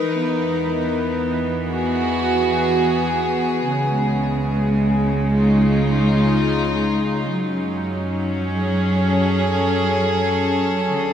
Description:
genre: ambient.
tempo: free time.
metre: none.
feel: none.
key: unclear.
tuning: A4 = 440 Hz.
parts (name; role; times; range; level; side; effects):
rich chamber string section; sustained chords; 0.0-11.1 s; C#3 to B4; -17 LUFS; equal; shimmer reverb.
warm sub bass; bass; 0.0-11.1 s; C#2 to F#2; -30 LUFS; right 1 dB; none.
room: wet cathedral reverb, RT60 5.8 s.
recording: in a vast, echoing space.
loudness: -17 LUFS.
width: side -8 dB against mid.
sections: 0.0-11.1 A section.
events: fade-in on sub bass 0.0-11.1.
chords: 0.0 Eadd9; 3.7 C#; 7.3 F#m.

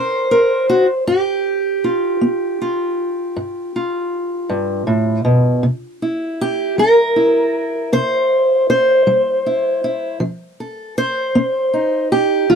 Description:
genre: acoustic country blues, solo or duo.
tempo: 52 BPM (dotted quarters).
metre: 12/8.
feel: straight.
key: C mixolydian.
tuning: A4 = 439 Hz.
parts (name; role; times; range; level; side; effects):
fingerpicked steel-string acoustic guitar; solo; 0.0-12.6 s; G2 to C5; -15 LUFS; equal; none.
room: little or no reverb.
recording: dry, close 1970s-style studio recording, lossy compression artefacts.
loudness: -15 LUFS.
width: side -7 dB against mid.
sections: 0.0-5.6 A section; 5.6-12.6 B section.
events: steel-string acoustic guitar solo 5.6-12.6.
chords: 0.0 C7; 1.1 G7; 5.6 C7; 10.2 F7.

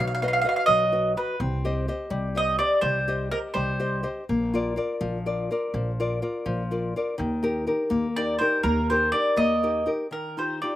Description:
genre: italian folk, Italian serenade.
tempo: 83 BPM (dotted quarters).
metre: 6/8.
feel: rubato.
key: Eb major.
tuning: A4 = 441 Hz.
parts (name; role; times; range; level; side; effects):
mandolin; melody; 0.0-4.1, 8.2-10.8 s; Bb4 to F5; -23 LUFS; right 1 dB; none.
nylon-string guitar; accompaniment; 0.0-10.8 s; Eb3 to D#5; -27 LUFS; left 2 dB; slapback echo.
upright bass; bass; 0.0-9.9 s; Bb1 to Eb2; -30 LUFS; equal; none.
room: little or no reverb.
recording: recorded outdoors, with no room sound.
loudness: -23 LUFS.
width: side -13 dB against mid.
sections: 0.0-10.1 A section.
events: none.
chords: 0.0 B; 1.4 Cm; 4.3 Bb; 7.2 Eb; 10.1 Ebadd9.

